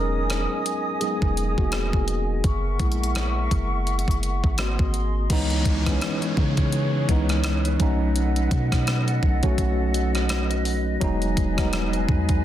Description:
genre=contemporary R&B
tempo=84 BPM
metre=4/4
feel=swing 58% on 16ths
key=C# dorian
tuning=A4 = 441 Hz
part: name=mellow tine electric piano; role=accompaniment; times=0.0-12.4 s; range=E3 to A#4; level=-26 LUFS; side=equal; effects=medium stereo tremolo
part: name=large flute ensemble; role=sustained chords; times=0.0-12.4 s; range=C#4 to D#6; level=-31 LUFS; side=right 1 dB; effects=none
part: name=warm 808-style bass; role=bass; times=0.0-12.4 s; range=E1 to C#3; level=-24 LUFS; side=equal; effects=none
part: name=clean 12-bit digital drum machine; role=drums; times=0.3-12.4 s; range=crash cymbal, hi-hat, kick drum, rim click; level=-25 LUFS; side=equal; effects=overdrive
part: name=downlifter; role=sound effects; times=5.3-11.0 s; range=none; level=-36 LUFS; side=equal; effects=none
room=little or no reverb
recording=dense, heavily limited modern master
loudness=-20 LUFS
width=side -12 dB against mid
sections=0.0-5.3 A section; 5.3-12.4 B section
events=tine electric piano solo 0.0-5.3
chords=0.0 Emaj7; 2.4 F#7; 4.6 G#7; 5.3 C#m7; 7.8 B7; 11.0 Emaj7

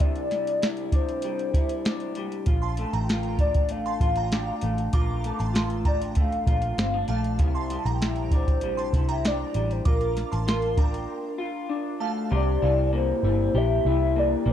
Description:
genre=indie pop, bedroom pop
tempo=98 BPM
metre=4/4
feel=straight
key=unclear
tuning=A4 = 440 Hz
part: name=hollow clarinet-like synth lead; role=melody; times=0.0-14.5 s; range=Bb4 to F5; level=-29 LUFS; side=left 1 dB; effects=analog chorus, tape echo
part: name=electric guitar through a small old amp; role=accompaniment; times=0.0-14.5 s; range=C3 to G4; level=-29 LUFS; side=left 3 dB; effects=analog chorus, warbly pitch drift
part: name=soft vintage rhythm box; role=drums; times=0.0-11.1 s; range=hi-hat, kick drum, snare drum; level=-24 LUFS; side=equal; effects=none
part: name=vintage muted picked electric bass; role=bass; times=2.5-14.5 s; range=G1 to C2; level=-27 LUFS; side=equal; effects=none
part: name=shimmering bell with halo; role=second line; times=2.6-12.2 s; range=F5 to D6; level=-36 LUFS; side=right 6 dB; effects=ensemble chorus, analog chorus, tape echo
room=digital ambience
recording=dark, warm production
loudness=-22 LUFS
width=side -10 dB against mid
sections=0.0-12.3 A section; 12.3-14.5 B section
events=break 11.1-12.3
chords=0.0 Cadd9; 2.5 Bbmaj7; 7.4 Cadd9; 9.9 Bbmaj7; 12.3 C7

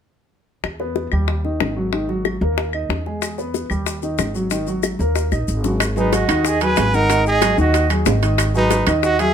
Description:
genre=Afro-Cuban jazz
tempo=186 BPM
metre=4/4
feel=straight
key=G# minor from 5.8 s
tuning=A4 = 440 Hz
part: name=upright bass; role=bass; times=0.6-9.3 s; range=G#1 to E2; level=-22 LUFS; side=equal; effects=none
part: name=bongos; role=percussion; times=0.6-9.3 s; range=none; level=-25 LUFS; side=left 8 dB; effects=none
part: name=claves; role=percussion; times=0.6-9.0 s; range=none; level=-29 LUFS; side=left 5 dB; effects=none
part: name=warm baby grand piano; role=accompaniment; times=0.8-9.3 s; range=D#3 to D#5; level=-22 LUFS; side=equal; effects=none
part: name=maracas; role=percussion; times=3.2-9.3 s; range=none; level=-32 LUFS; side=left 9 dB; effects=none
part: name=timbales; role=percussion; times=5.8-9.3 s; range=none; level=-24 LUFS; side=right 9 dB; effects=none
part: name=clear trumpet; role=melody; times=6.0-9.3 s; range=D#4 to B4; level=-20 LUFS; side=equal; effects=plate reverb
part: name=breathy bright concert flute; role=second line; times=6.0-9.3 s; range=B4 to G#5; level=-22 LUFS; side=right 6 dB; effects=none
room=moderate studio reverb, RT60 0.6 s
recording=none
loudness=-16 LUFS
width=side -8 dB against mid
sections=0.6-5.8 A section; 5.8-9.3 B section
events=drum fill 5.3-5.8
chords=0.6 E5; 1.3 D#; 1.9 G#5; 2.6 D#5; 3.2 E; 3.9 D#; 4.5 G#5; 5.8 G#m7

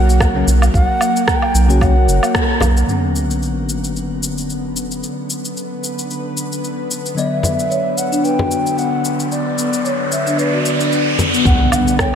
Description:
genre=organic downtempo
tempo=112 BPM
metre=4/4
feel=swing 56% on 16ths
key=B harmonic minor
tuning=A4 = 441 Hz
part: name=bansuri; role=melody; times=0.0-2.6, 7.2-12.2 s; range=D5 to G5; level=-22 LUFS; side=left 1 dB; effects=digital delay, shimmer reverb, slapback echo
part: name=bowed-like drone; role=sustained chords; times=0.0-12.2 s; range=D3 to B4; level=-24 LUFS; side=right 1 dB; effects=built-in reverb, sidechain pumping, shimmer reverb
part: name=round analog bass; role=bass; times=0.0-2.8, 11.5-11.6 s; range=F#1 to B1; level=-14 LUFS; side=equal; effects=sidechain pumping
part: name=electronic cabasa, rim click and woodblock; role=drums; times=0.1-12.1 s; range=none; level=-22 LUFS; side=equal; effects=small room ambience
part: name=marimba with soft mallets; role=arpeggios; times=0.2-2.9, 7.4-12.2 s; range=A#3 to A#5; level=-21 LUFS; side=left 1 dB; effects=digital delay, shimmer reverb, slapback echo
part: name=electronic kick drum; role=drums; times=0.2-2.5, 11.5-12.1 s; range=none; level=-18 LUFS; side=equal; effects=small room ambience
part: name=bell-like tine electric piano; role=accompaniment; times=0.3-11.4 s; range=C#3 to D5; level=-25 LUFS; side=left 3 dB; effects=medium stereo tremolo, sidechain pumping, digital delay, shimmer reverb
part: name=frame drum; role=percussion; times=2.6-2.7, 7.4-11.3 s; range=none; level=-22 LUFS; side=left 2 dB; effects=none
part: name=sub drop, riser and impact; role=sound effects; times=2.9-12.2 s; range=none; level=-22 LUFS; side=right 1 dB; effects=none
room=moderate lush hall reverb, RT60 2.1 s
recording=big arena sound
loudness=-14 LUFS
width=side -8 dB against mid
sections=0.0-2.9 A section; 2.9-11.5 B section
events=band accent 2.3; impact 2.9-5.0, 11.5-12.2; riser 8.8-11.5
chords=0.0 F#/B; 2.9 Bmadd9

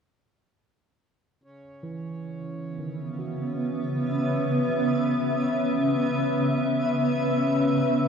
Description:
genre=ambient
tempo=free time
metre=none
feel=none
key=C# minor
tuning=A4 = 440 Hz
part: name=pedal harmonium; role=drone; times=1.4-8.1 s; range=C#3 to C#4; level=-42 LUFS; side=equal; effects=none
part: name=granular cloud pad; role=sustained chords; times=2.8-8.1 s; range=C#3 to E5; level=-23 LUFS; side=equal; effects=built-in reverb
part: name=tine electric piano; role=arpeggios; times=1.8-8.1 s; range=C#3 to F#4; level=-35 LUFS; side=right 2 dB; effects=ping-pong delay
room=wet cathedral reverb, RT60 6.1 s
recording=dark, warm production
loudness=-23 LUFS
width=side -6 dB against mid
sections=1.4-8.1 A section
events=fade-in on tine electric piano 1.4-8.1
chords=1.4 C#m11

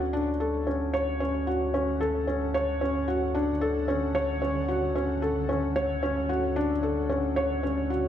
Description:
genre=piano and strings electronica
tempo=112 BPM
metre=4/4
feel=straight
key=D major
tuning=A4 = 439 Hz
part: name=granular cloud pad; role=sustained chords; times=0.0-8.1 s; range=D3 to F#5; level=-40 LUFS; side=right 2 dB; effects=built-in reverb
part: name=felt-muted upright piano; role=riff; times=0.0-8.1 s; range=C#4 to C#5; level=-26 LUFS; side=left 1 dB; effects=ping-pong delay
part: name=round analog bass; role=bass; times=0.0-8.1 s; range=D2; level=-33 LUFS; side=equal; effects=none
room=moderate scoring stage reverb, RT60 1.6 s, digital ambience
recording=nothing above 10.9 kHz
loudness=-25 LUFS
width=side -10 dB against mid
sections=0.0-8.1 A section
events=fade-in on ambient pad 0.0-8.1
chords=0.0 Dmaj7

